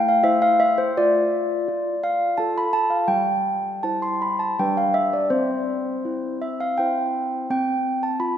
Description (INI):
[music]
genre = classical, tune for handbells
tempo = 83 BPM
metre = 3/4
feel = straight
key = C major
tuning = A4 = 440 Hz
[part]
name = handbells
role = solo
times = 0.0-8.4 s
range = G3 to C6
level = -19 LUFS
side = equal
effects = none
[sound]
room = wet concert hall reverb, RT60 2.6 s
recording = minimal, uncompressed stereo recording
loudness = -20 LUFS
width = side -9 dB against mid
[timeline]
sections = 0.0-8.4 A section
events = none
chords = 0.0 Am; 0.9 Dm/F; 3.1 C/G; 4.6 G; 5.3 C; 7.5 Csus4